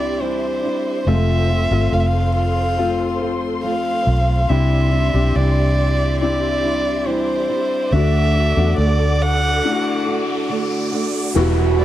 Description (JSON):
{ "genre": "pop ballad", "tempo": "70 BPM", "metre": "4/4", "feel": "straight", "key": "unclear", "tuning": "A4 = 440 Hz", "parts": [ { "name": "warm violin", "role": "melody", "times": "0.0-11.8 s", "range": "C5 to F#5", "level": "-22 LUFS", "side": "right 1 dB", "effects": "none" }, { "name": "warm concert grand piano", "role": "accompaniment", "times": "0.0-11.8 s", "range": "C3 to G4", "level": "-23 LUFS", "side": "left 6 dB", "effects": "none" }, { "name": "dark studio string section", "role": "sustained chords", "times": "0.0-11.8 s", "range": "G3 to D6", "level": "-28 LUFS", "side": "right 1 dB", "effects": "none" }, { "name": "nylon-string guitar", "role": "arpeggios", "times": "0.0-11.8 s", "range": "E2 to F#4", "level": "-26 LUFS", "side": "right 4 dB", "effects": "none" }, { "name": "vintage muted fingered electric bass", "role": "bass", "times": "0.0-11.8 s", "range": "E1 to E2", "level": "-18 LUFS", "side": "equal", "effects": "none" }, { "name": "riser and downlifter", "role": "sound effects", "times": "8.9-11.8 s", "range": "none", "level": "-30 LUFS", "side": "right 3 dB", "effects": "none" }, { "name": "mellow French horn section", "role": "second line", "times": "11.4-11.8 s", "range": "F#4", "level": "-21 LUFS", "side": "right 18 dB", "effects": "none" } ], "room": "small room reverb", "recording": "dry, close 1970s-style studio recording", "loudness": "-16 LUFS", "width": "side -13 dB against mid", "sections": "0.0-11.4 A section", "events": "riser 8.9-11.4; break 9.6-11.4", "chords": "0.0 Cadd9; 1.1 F; 4.5 Cadd9; 7.9 D" }